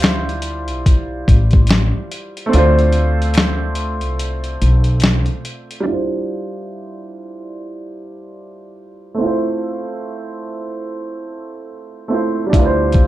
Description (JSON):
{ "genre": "lo-fi hip hop", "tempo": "72 BPM", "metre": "4/4", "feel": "swing 60% on 16ths", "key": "D dorian", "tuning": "A4 = 440 Hz", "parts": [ { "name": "warm upright piano", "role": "accompaniment", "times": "0.0-13.1 s", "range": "G3 to F5", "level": "-21 LUFS", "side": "right 2 dB", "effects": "cassette tape, low-pass filter" }, { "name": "upright bass", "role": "bass", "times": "0.0-5.2, 12.5-13.1 s", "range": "A1 to D2", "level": "-16 LUFS", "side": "equal", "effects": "none" }, { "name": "dusty soul sampler-style drum kit", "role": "drums", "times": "0.0-5.9, 12.5-13.1 s", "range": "hi-hat, kick drum, snare drum", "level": "-15 LUFS", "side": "equal", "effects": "none" }, { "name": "finger snaps", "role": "percussion", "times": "0.0-5.3 s", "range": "none", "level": "-32 LUFS", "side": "left 6 dB", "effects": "none" } ], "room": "light reverb", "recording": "dark, warm production", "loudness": "-15 LUFS", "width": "side -15 dB against mid", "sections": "0.0-5.9 A section; 5.9-13.1 B section", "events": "kick muted 2.5-5.9; filter sweep on upright piano 5.9-13.1", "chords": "0.0 Dm11; 2.5 Dm7; 5.9 Dm11; 9.2 Fmaj7; 12.5 Dm11" }